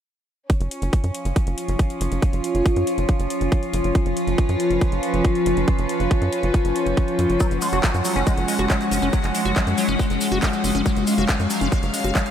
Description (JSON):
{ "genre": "psychedelic trance", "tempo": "139 BPM", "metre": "4/4", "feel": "straight", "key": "unclear", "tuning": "A4 = 440 Hz", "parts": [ { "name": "evolving wavetable pad", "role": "sustained chords", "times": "0.9-12.3 s", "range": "E#3 to E#4", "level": "-24 LUFS", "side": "left 1 dB", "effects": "phaser, built-in reverb, sidechain pumping" }, { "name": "electronic kick drum", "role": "drums", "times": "0.5-12.2 s", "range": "none", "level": "-20 LUFS", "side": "equal", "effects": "none" }, { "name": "garage drum kit", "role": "drums", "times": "0.5-12.3 s", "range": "handclaps, hi-hat", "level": "-30 LUFS", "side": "left 1 dB", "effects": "none" }, { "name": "warm studio string section", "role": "texture", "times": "0.5-12.3 s", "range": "C#4 to F#5", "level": "-28 LUFS", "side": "equal", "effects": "sidechain pumping" }, { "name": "tight sequencer bass", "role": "bass", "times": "0.6-12.1 s", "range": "F#1 to F#2", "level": "-24 LUFS", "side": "equal", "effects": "none" }, { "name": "liquid acid bass", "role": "riff", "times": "7.4-12.2 s", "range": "F#3 to F#4", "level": "-26 LUFS", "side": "left 1 dB", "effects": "phaser, auto-pan, sidechain pumping, ping-pong delay" }, { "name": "cabasa", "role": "percussion", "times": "7.4-12.3 s", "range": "none", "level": "-34 LUFS", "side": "left 4 dB", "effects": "none" } ], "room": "moderate huge ambient reverb, RT60 6.4 s", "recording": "dreamy mix soaked in reverb", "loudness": "-18 LUFS", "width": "side -9 dB against mid", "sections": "0.5-12.3 A section", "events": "none", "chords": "0.5 F#5", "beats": "| 0.50 0.93 1.36 1.79 | 2.22 2.66 3.09 3.52 | 3.95 4.38 4.81 5.25 | 5.68 6.11 6.54 6.97 | 7.40 7.84 8.27 8.70 | 9.13 9.56 9.99 10.43 | 10.86 11.29 11.72 12.15" }